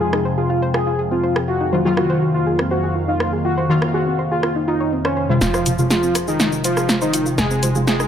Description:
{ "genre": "melodic techno", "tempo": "122 BPM", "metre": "4/4", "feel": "straight", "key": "F phrygian", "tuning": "A4 = 440 Hz", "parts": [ { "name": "wide unison lead", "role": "melody", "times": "0.0-8.1 s", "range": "Db4 to Ab4", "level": "-22 LUFS", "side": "equal", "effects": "wide subtle chorus, tape echo" }, { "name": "warm analog pad", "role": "sustained chords", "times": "0.0-8.1 s", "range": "C3 to F5", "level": "-24 LUFS", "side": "left 1 dB", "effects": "chorus" }, { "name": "soft round pluck", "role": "arpeggios", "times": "0.0-8.1 s", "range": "C4 to Db5", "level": "-25 LUFS", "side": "right 2 dB", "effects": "chorus, dub echo" }, { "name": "overtone-sweeping drone", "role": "drone", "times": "0.0-8.1 s", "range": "F2 to C3", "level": "-29 LUFS", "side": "equal", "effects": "chorus, built-in reverb, phaser" }, { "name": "techno drum kit", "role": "drums", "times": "0.1-8.1 s", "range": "hi-hat, rim click, shaker, snare drum", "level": "-21 LUFS", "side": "equal", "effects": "overdrive" }, { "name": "synth brass stab", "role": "stabs", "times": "1.7-7.8 s", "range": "C3 to F4", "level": "-22 LUFS", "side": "left 2 dB", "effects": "chorus, dub echo" }, { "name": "soft supersaw", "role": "second line", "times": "5.4-8.1 s", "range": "Eb3 to Ab3", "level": "-26 LUFS", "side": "equal", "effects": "cassette tape, dub echo" }, { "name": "tight sequencer bass", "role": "bass", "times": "5.4-8.1 s", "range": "F1", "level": "-32 LUFS", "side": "equal", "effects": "none" } ], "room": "moderate lush hall reverb, RT60 2.0 s", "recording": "dark, warm production", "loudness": "-16 LUFS", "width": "side -9 dB against mid", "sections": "0.0-5.4 A section; 5.4-8.1 B section", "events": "filter sweep on analog synth pad 0.0-5.4, 5.4-8.1; build-up 5.4-8.1; drum fill 5.4-8.1; filter sweep on synth stab 5.4-8.1", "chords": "0.0 Fm; 1.5 Ebmadd9; 5.4 Fm" }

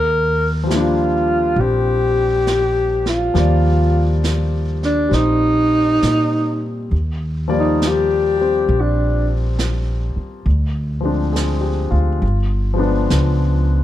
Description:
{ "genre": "jazz ballad", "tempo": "68 BPM", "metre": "4/4", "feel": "swing 66% on 8ths", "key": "Eb major", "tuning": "A4 = 439 Hz", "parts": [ { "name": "mellow alto saxophone", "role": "melody", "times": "0.0-9.3 s", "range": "D4 to Bb4", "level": "-17 LUFS", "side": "equal", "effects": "none" }, { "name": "upright bass", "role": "bass", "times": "0.0-13.8 s", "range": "G1 to Bb2", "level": "-18 LUFS", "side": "equal", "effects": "none" }, { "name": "clear concert grand piano", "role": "accompaniment", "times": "0.6-13.8 s", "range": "F3 to D5", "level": "-23 LUFS", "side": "left 4 dB", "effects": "none" }, { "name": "vintage brush drum kit", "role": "drums", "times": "0.7-13.8 s", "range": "brushed snare drum, hi-hat, snare drum", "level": "-28 LUFS", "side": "right 3 dB", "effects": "none" } ], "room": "light reverb", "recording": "dark, warm production", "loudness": "-15 LUFS", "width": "side -13 dB against mid", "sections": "0.0-6.9 A section; 6.9-13.8 B section", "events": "alto saxophone solo 6.9-13.8", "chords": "0.0 Ebmaj9; 10.5 Dm7b5; 12.2 G7b9" }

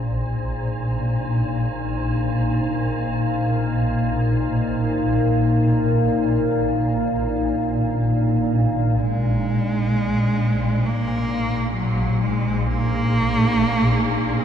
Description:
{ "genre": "dark ambient drone", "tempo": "free time", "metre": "none", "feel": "none", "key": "unclear", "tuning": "A4 = 439 Hz", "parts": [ { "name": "dark analog pad", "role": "sustained chords", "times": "0.0-14.4 s", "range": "Bb3 to F5", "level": "-24 LUFS", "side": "left 1 dB", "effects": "chorus, phaser" }, { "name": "swarming drone", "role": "drone", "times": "0.0-14.4 s", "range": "Bb1 to Bb2", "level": "-21 LUFS", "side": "equal", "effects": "built-in reverb" }, { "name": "rich cello", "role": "melody", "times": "9.0-14.4 s", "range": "Gb3 to Bb3", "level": "-22 LUFS", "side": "right 1 dB", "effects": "tape echo" } ], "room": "wet huge ambient reverb, RT60 7.7 s", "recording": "none", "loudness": "-18 LUFS", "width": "side -9 dB against mid", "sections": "0.0-9.0 A section; 9.0-14.4 B section", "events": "fade-in on analog synth pad 0.0-9.0, 9.0-14.4", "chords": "0.0 Bb5" }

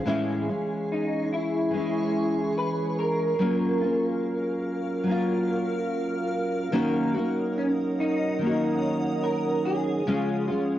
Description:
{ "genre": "indie pop", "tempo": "72 BPM", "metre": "4/4", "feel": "straight", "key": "unclear", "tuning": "A4 = 440 Hz", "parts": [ { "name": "mellow tonewheel organ", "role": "accompaniment", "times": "0.0-10.8 s", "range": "E3 to Bb4", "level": "-29 LUFS", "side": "right 3 dB", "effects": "slow rotary speaker, cassette tape" }, { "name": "nylon-string guitar", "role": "accompaniment", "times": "0.0-10.8 s", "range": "A2 to Gb4", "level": "-28 LUFS", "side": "left 2 dB", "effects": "analog chorus, warbly pitch drift, cassette tape" }, { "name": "granular cloud pad", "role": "sustained chords", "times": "0.0-10.8 s", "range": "G#4 to F6", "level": "-35 LUFS", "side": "equal", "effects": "built-in reverb, cassette tape" }, { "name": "electric guitar through a small old amp", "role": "melody", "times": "0.9-10.8 s", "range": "Db4 to Cb5", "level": "-28 LUFS", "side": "equal", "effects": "ensemble chorus, cassette tape" } ], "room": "light reverb", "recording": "home recording on cassette", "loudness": "-24 LUFS", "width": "side -12 dB against mid", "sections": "0.1-10.8 A section", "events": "none", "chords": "0.1 Amaj7; 3.4 Gbmaj7; 6.7 Ebm7; 10.1 Db" }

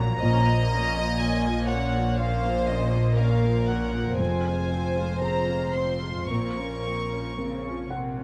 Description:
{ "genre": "cinematic", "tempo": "54-62 BPM", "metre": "4/4", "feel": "rubato", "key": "Bb minor", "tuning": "A4 = 440 Hz", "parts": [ { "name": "warm studio violin section", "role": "melody", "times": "0.0-7.9 s", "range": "Eb5 to Db6", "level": "-34 LUFS", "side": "equal", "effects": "none" }, { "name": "felt-muted upright piano", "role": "accompaniment", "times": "0.0-8.2 s", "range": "F2 to Gb5", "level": "-33 LUFS", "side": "equal", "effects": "none" }, { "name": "warm studio viola section", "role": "accompaniment", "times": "0.0-8.2 s", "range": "F3 to F4", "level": "-36 LUFS", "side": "equal", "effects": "none" }, { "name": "concert harp", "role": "arpeggios", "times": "0.0-8.2 s", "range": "F2 to Bb4", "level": "-39 LUFS", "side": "equal", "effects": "none" }, { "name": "warm studio cello section", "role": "bass", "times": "0.0-8.2 s", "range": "F2 to Db3", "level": "-33 LUFS", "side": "equal", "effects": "none" }, { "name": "warm studio double bass section", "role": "bass", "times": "0.0-8.2 s", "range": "F1 to Bb1", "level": "-31 LUFS", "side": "equal", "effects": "none" }, { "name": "warm studio violin section", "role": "second line", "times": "0.2-7.9 s", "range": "Bb4 to Eb5", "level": "-33 LUFS", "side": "equal", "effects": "none" } ], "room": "light reverb", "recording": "close, detailed microphones", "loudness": "-25 LUFS", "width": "mono", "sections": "0.0-8.2 A section", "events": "none", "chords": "0.2 Bbm; 4.2 Fm; 6.3 Bbmadd9" }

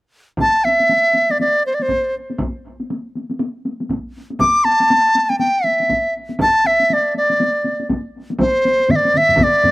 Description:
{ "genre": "japanese traditional, taiko drum ensemble", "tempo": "120 BPM", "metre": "4/4", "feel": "swing 60% on 16ths", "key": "D suspended pentatonic", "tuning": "A4 = 442 Hz", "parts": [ { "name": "bright reedy large dizi", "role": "melody", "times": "0.4-9.7 s", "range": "C5 to D6", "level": "-14 LUFS", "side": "equal", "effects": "none" }, { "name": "taiko ensemble", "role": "percussion", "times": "0.4-9.7 s", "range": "none", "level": "-23 LUFS", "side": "left 1 dB", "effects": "none" }, { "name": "taiko ensemble", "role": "percussion", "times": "0.4-9.5 s", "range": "none", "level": "-24 LUFS", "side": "right 1 dB", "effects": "none" }, { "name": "taiko ensemble", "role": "percussion", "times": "8.9-9.7 s", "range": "none", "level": "-25 LUFS", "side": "left 1 dB", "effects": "none" }, { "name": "taiko ensemble", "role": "percussion", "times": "8.9-9.7 s", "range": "none", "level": "-25 LUFS", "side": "right 2 dB", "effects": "none" } ], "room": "light reverb", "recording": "recorded outdoors, with no room sound", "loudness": "-14 LUFS", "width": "side -20 dB against mid", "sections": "0.4-8.4 A section; 8.4-9.7 B section", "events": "none", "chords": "none" }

